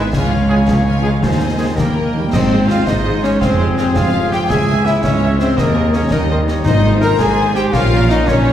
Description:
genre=cinematic, heroic adventure film score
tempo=111 BPM (dotted quarters)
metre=6/8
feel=straight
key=Ab major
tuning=A4 = 440 Hz
part: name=bright symphonic violin section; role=melody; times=0.0-8.5 s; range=Bb4 to Bb5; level=-27 LUFS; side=left 4 dB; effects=none
part: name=rich studio violin section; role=second line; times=0.0-8.5 s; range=F4 to Bb5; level=-30 LUFS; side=left 2 dB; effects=none
part: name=rich symphonic viola section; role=accompaniment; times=0.0-8.5 s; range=G3 to F5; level=-27 LUFS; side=right 1 dB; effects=none
part: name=clear trombone section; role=sustained chords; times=0.0-8.5 s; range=Ab2 to Db4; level=-26 LUFS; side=right 2 dB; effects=none
part: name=concert harp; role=arpeggios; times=0.0-8.5 s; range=F2 to Fb5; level=-26 LUFS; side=left 5 dB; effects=none
part: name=clear symphonic cello section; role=bass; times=0.0-8.5 s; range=Db2 to Bb2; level=-21 LUFS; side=right 2 dB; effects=none
part: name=rich symphonic double bass section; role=bass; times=0.0-8.5 s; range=F1 to Eb2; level=-19 LUFS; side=right 1 dB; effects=none
part: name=clear oboe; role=second line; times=0.1-8.5 s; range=Ab4 to Fb5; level=-27 LUFS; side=right 1 dB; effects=none
part: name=mellow hollow concert flute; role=second line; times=0.1-8.5 s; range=Bb4 to Bb5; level=-26 LUFS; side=left 2 dB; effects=none
part: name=concert snare drum, concert bass drum and clash cymbals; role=drums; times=0.1-8.4 s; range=none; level=-21 LUFS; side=equal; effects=none
part: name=dark French horn section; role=sustained chords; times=0.5-8.5 s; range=Bb3 to Bb4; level=-20 LUFS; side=left 3 dB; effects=none
part: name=warm trumpet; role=stabs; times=0.5-8.5 s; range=Bb3 to Bb4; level=-24 LUFS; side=right 1 dB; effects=none
part: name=timpani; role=percussion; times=1.2-2.8, 6.7-7.2 s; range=Ab2 to Eb3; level=-22 LUFS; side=equal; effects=none
room=wet recital hall reverb, RT60 1.5 s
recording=heard from further back in the room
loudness=-12 LUFS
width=side -10 dB against mid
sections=0.0-2.3 A section; 2.3-8.5 B section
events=build-up 0.0-2.3; timpani fill 1.8-2.3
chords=0.1 Db; 1.2 Ab/Eb; 1.8 Eb; 2.3 Ab; 3.4 Fm; 4.5 Dbm; 5.6 Ebsus4; 6.1 Eb; 6.7 Abadd9; 7.7 Bbm

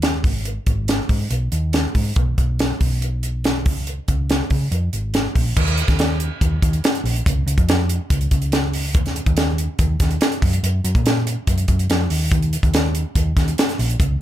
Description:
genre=math rock and midwest emo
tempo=142 BPM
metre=4/4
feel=straight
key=Eb minor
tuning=A4 = 441 Hz
part: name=hollow-body short-scale picked electric bass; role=bass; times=0.0-14.2 s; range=Ab1 to Db3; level=-20 LUFS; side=equal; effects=none
part: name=crisp fusion drum kit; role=drums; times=0.0-14.1 s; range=crash cymbal, hi-hat, kick drum, snare drum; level=-19 LUFS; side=equal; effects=none
room=light reverb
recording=none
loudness=-17 LUFS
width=side -12 dB against mid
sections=0.0-5.6 A section; 5.6-14.2 B section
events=none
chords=none

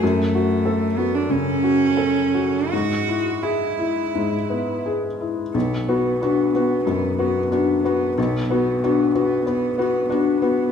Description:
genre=neoclassical piano and strings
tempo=79-96 BPM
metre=4/4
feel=rubato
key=B dorian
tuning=A4 = 440 Hz
part: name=warm cello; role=second line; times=0.0-10.7 s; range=A3 to F#4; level=-24 LUFS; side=right 4 dB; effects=none
part: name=felt-muted upright piano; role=accompaniment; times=0.0-10.7 s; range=B1 to A4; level=-20 LUFS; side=left 3 dB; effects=none
room=wet recital hall reverb, RT60 1.3 s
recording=recorded in a church or concert hall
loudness=-18 LUFS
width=side -7 dB against mid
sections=0.0-5.5 A section; 5.5-10.7 B section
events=none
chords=0.0 F#m; 2.7 E/G#; 5.5 Bm

